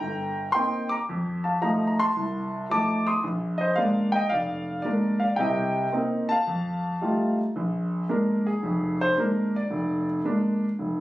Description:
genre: solo jazz.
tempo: 111 BPM.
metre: 4/4.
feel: swing 68% on 8ths.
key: Bb major.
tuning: A4 = 441 Hz.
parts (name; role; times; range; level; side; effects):
warm concert grand piano; solo; 0.0-11.0 s; F1 to Eb6; -23 LUFS; equal; none.
room: moderate studio reverb, RT60 0.7 s.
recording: recorded on a phone in the room, club reverb.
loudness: -23 LUFS.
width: side -16 dB against mid.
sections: 0.0-7.5 A section; 7.5-11.0 B section.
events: grand piano solo 7.5-11.0.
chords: 0.0 Cm7; 1.1 F7; 3.2 Bb7; 5.4 Cm7; 6.5 F9; 7.5 Bb7.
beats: 0.00 0.54 | 1.07 1.61 2.15 2.69 | 3.23 3.77 4.31 4.85 | 5.39 5.93 6.47 7.01 | 7.55 8.09 8.63 9.17 | 9.71 10.25 10.79.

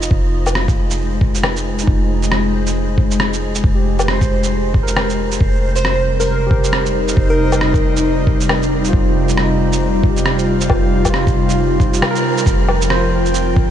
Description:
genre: future garage.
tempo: 136 BPM.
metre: 4/4.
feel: swing 60% on 16ths.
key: F minor.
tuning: A4 = 440 Hz.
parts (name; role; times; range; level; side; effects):
barky tine electric piano; accompaniment; 0.0-13.7 s; Eb4 to C5; -23 LUFS; right 3 dB; slow stereo tremolo, sidechain pumping, diffuse ambient delay.
soft 808-style bass; bass; 0.0-13.7 s; F1; -20 LUFS; equal; sidechain pumping.
electronic shaker, woodblock and rim click; drums; 0.0-13.5 s; none; -21 LUFS; equal; vintage 12-bit sampler grit.
backwards swelling texture; texture; 0.0-13.7 s; C5 to Eb5; -29 LUFS; left 1 dB; built-in reverb.
electronic kick drum; drums; 0.1-13.7 s; none; -16 LUFS; equal; vintage 12-bit sampler grit.
airy breathy pad; sustained chords; 0.2-13.7 s; C3 to G5; -20 LUFS; left 2 dB; chorus, sidechain pumping.
glassy wavetable pluck; melody; 5.8-7.6 s; Bb4 to C5; -24 LUFS; equal; chorus, vintage 12-bit sampler grit, ping-pong delay.
room: moderate huge ambient reverb, RT60 7.5 s.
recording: dreamy mix soaked in reverb.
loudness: -13 LUFS.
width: side -10 dB against mid.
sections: 0.0-12.5 A section; 12.5-13.7 B section.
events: band accent 12.0.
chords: 0.0 Fm7; 5.4 Cm/F; 12.5 F7(no3).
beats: | 0.11 0.55 0.99 1.43 | 1.87 2.32 2.76 3.20 | 3.64 4.08 4.52 4.96 | 5.40 5.84 6.29 6.73 | 7.17 7.61 8.05 8.49 | 8.93 9.37 9.82 10.26 | 10.70 11.14 11.58 12.02 | 12.46 12.90 13.35.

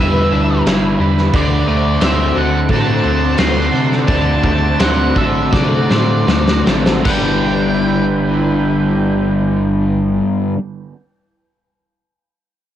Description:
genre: rock, shoegaze and dream pop.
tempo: 76-89 BPM.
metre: 4/4.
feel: straight.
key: G major.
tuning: A4 = 439 Hz.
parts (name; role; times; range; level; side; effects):
octave-fuzz lead guitar; melody; 0.0-10.2 s; D5 to C6; -22 LUFS; equal; distortion, cassette tape, analog delay.
sweeping resonant pad; sustained chords; 0.0-10.2 s; G3 to E6; -24 LUFS; equal; chorus, cassette tape.
biting overdriven guitar; riff; 0.0-10.6 s; G2 to B4; -22 LUFS; right 8 dB; reverse reverb, cassette tape.
overdriven electric guitar; riff; 0.0-10.6 s; G2 to B4; -19 LUFS; left 5 dB; ensemble chorus, cassette tape.
overdriven electric guitar; riff; 0.0-10.6 s; G2 to D4; -19 LUFS; equal; cassette tape.
pure sine sub bass; bass; 0.0-10.2 s; G1 to C3; -21 LUFS; equal; transformer saturation.
huge arena drum kit; drums; 0.7-7.2 s; crash cymbal, kick drum, snare drum; -18 LUFS; equal; cassette tape.
room: light reverb.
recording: home recording on cassette.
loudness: -12 LUFS.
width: side -11 dB against mid.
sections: 0.0-7.1 A section; 7.1-10.2 B section.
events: slowing down 1.3-7.1; drum fill 5.5-7.1.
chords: 0.0 G6; 1.3 D7; 7.1 G6.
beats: 0.67 | 1.34 2.01 2.69 3.38 | 4.08 4.79 5.53 6.28 | 7.05 7.84 8.63 9.42.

